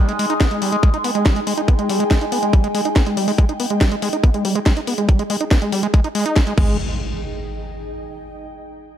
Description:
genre	psychedelic trance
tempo	141 BPM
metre	4/4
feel	straight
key	unclear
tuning	A4 = 440 Hz
part	overtone-sweeping drone	sustained chords	0.0-6.6 s	G#3	-26 LUFS	equal	chorus, built-in reverb, phaser, sidechain pumping
part	overdriven acid bass	riff	0.0-6.8 s	G3 to D#4	-21 LUFS	right 1 dB	distortion, auto-pan, sidechain pumping, digital delay
part	ethereal airy pad	texture	0.0-8.5 s	D#4 to G5	-32 LUFS	left 2 dB	ensemble chorus, built-in reverb, sidechain pumping
part	garage drum kit	drums	0.1-6.7 s	crash cymbal, hi-hat, snare drum	-25 LUFS	left 1 dB	none
part	electronic kick drum	drums	0.4-6.7 s	none	-14 LUFS	equal	none
part	tight sequencer bass	bass	6.6-6.8 s	G#1	-21 LUFS	equal	none
part	impact	sound effects	6.6-8.3 s	none	-28 LUFS	equal	none
room	little or no reverb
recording	none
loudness	-16 LUFS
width	side -10 dB against mid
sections	0.0-6.8 A section; 6.8-8.5 B section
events	fade-out on ambient pad 0.0-6.8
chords	0.0 G#5

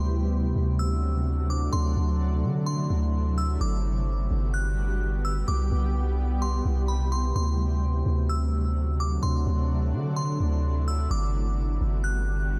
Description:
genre	hip hop, atmospheric cloud-rap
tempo	128 BPM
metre	4/4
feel	half-time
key	unclear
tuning	A4 = 440 Hz
part	glassy synth bell	melody	0.0-12.6 s	B5 to F#6	-38 LUFS	equal	chorus, tape echo
part	granular cloud pad	sustained chords	0.0-12.6 s	C3 to G4	-34 LUFS	equal	built-in reverb
part	long sustained 808-style bass	bass	0.0-12.6 s	G1 to D3	-27 LUFS	equal	none
room	digital ambience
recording	dark, warm production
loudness	-26 LUFS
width	mono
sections	0.0-12.6 A section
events	none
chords	0.0 D7; 3.6 Gmaj7; 5.5 Cmaj7; 7.4 D7; 11.1 Gmaj7

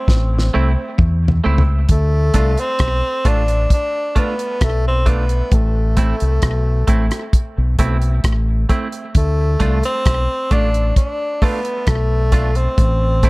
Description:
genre	roots reggae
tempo	66 BPM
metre	4/4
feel	straight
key	D dorian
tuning	A4 = 440 Hz
part	breathy tenor saxophone	melody	0.0-13.3 s	A3 to D4	-22 LUFS	equal	dub echo, plate reverb
part	deep dub fingered electric bass	bass	0.1-13.3 s	A1 to E2	-16 LUFS	equal	none
part	damped 70s drum kit	drums	0.1-13.3 s	hi-hat, kick drum, rim click, snare drum, toms	-16 LUFS	equal	none
part	semi-hollow electric guitar	accompaniment	0.5-13.3 s	A3 to F4	-25 LUFS	right 3 dB	spring reverb, dub echo, plate reverb
room	little or no reverb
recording	none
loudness	-14 LUFS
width	side -23 dB against mid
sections	0.0-1.9 A section; 1.9-13.3 B section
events	drum fill 0.1-1.9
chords	0.0 Am; 1.9 Dm; 5.5 Am; 9.1 Dm; 12.8 Am

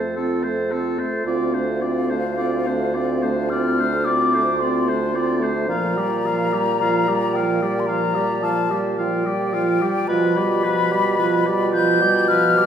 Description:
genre	classical, slow romantic movement for wind quintet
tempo	54 BPM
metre	4/4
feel	rubato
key	unclear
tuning	A4 = 438 Hz
part	warm oboe	second line	0.0-12.7 s	A4 to F5	-27 LUFS	left 2 dB	none
part	warm French horn	accompaniment	0.0-12.7 s	F3 to C4	-24 LUFS	right 1 dB	none
part	warm clarinet	accompaniment	0.0-12.7 s	D4 to A4	-26 LUFS	right 5 dB	none
part	warm bassoon	bass	0.0-12.7 s	D2 to B2	-24 LUFS	right 2 dB	none
part	mellow hollow silver concert flute	melody	1.3-12.7 s	F5 to G6	-23 LUFS	left 5 dB	none
room	wet recital hall reverb, RT60 1.4 s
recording	heard from further back in the room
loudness	-18 LUFS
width	side -8 dB against mid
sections	0.0-12.7 A section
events	none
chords	0.0 F; 1.3 Dm7; 5.7 Gm7/Bb; 10.1 G7/B

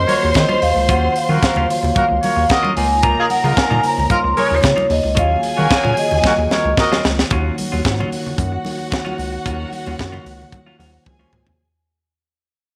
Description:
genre	disco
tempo	112 BPM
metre	4/4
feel	straight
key	Eb dorian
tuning	A4 = 441 Hz
part	vibraphone with soft mallets	melody	0.0-7.0 s	Db5 to C6	-20 LUFS	equal	none
part	warm studio violin section	second line	0.0-11.6 s	Gb4 to C6	-26 LUFS	equal	none
part	mellow tine electric piano	accompaniment	0.0-11.6 s	Db3 to Db5	-29 LUFS	equal	none
part	round analog bass	bass	0.0-11.5 s	Db2 to Eb3	-22 LUFS	equal	none
part	clear horn section	stabs	0.1-7.0 s	Bb3 to Eb5	-24 LUFS	equal	none
part	tight funk drum kit	drums	0.1-11.6 s	hi-hat, kick drum, snare drum, toms	-23 LUFS	equal	none
part	congas	percussion	0.1-11.5 s	none	-31 LUFS	equal	none
part	clean electric guitar	accompaniment	0.2-11.5 s	Gb3 to F4	-31 LUFS	equal	subtle chorus
room	moderate plate reverb, RT60 1.5 s, studio reverb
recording	none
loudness	-17 LUFS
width	mono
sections	0.0-7.3 A section; 7.3-11.6 B section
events	drum fill 6.2-7.3, 11.1-11.6; fade-out 7.3-11.6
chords	0.0 Ebm9; 2.8 Db69; 5.2 Ebm9

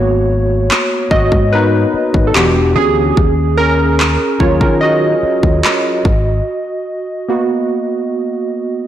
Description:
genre	contemporary R&B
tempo	73 BPM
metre	4/4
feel	straight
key	unclear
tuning	A4 = 439 Hz
part	warm analog keys	accompaniment	0.0-8.9 s	E3 to Eb5	-14 LUFS	right 1 dB	chorus
part	fingered electric bass	bass	0.0-6.4 s	E1 to Eb3	-16 LUFS	equal	none
part	trap drum kit	drums	0.7-6.2 s	handclaps, kick drum	-15 LUFS	equal	overdrive
room	light reverb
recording	blown-out, overdriven recording, overdrive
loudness	-11 LUFS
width	side -11 dB against mid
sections	0.0-8.9 A section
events	synth keys solo 0.0-8.9; break 6.5-8.9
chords	0.0 Abm9; 2.4 Em7; 3.2 Ebm7; 6.0 Abm9

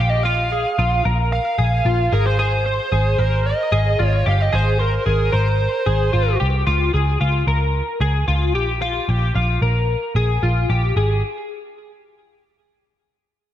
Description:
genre	jangly indie pop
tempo	112 BPM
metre	4/4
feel	straight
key	unclear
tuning	A4 = 440 Hz
part	dark smooth lead guitar	melody	0.0-6.4 s	Bb4 to F5	-22 LUFS	right 2 dB	overdrive
part	twelve-string electric guitar	arpeggios	0.0-11.2 s	F4 to C5	-22 LUFS	left 2 dB	analog chorus, ping-pong delay
part	vintage muted picked electric bass	bass	0.0-11.2 s	G1 to Db2	-18 LUFS	equal	none
room	moderate lush hall reverb, RT60 1.9 s, digital ambience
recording	dreamy mix soaked in reverb, cassette tape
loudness	-16 LUFS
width	side -11 dB against mid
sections	0.0-6.7 A section; 6.7-11.0 B section; 11.0-13.1 C section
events	none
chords	0.0 Bb5; 2.1 Ab; 6.7 Db; 8.5 Bb5; 11.0 N.C.

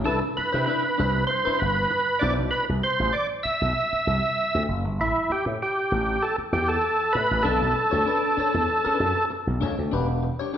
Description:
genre	funk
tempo	97 BPM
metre	4/4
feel	straight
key	unclear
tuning	A4 = 438 Hz
part	clean electric guitar	accompaniment	0.0-2.4, 7.4-10.6 s	D4 to C#5	-29 LUFS	left 4 dB	none
part	slap bass with an envelope filter	bass	0.0-10.3 s	E1 to C3	-27 LUFS	equal	none
part	overdriven tonewheel organ	melody	0.1-9.3 s	E4 to E5	-23 LUFS	right 1 dB	chorus vibrato
room	wet large studio reverb, RT60 1.4 s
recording	band playing live in one room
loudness	-21 LUFS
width	side -9 dB against mid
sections	0.0-9.9 A section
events	none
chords	0.1 Cmaj9; 5.0 A5; 7.5 Bm7; 9.9 Em7

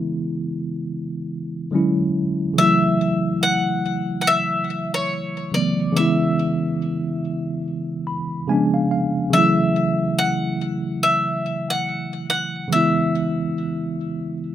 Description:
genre	R&B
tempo	71 BPM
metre	4/4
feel	swing 58% on 16ths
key	F# minor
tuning	A4 = 440 Hz
part	bowl-back mandolin	melody	0.0-14.4 s	C#5 to F#5	-21 LUFS	left 2 dB	ping-pong delay
part	mellow tine electric piano	accompaniment	0.0-14.5 s	C#3 to B5	-21 LUFS	right 1 dB	medium stereo tremolo
room	light reverb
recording	rough home demo mix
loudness	-19 LUFS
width	side -11 dB against mid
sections	0.0-2.6 A section; 2.6-14.5 B section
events	tine electric piano fill 7.6-9.3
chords	0.0 C#m7; 1.7 E13; 2.6 F#m7; 6.0 C#m7; 8.5 C#7b9; 9.3 F#m7; 12.7 C#m7

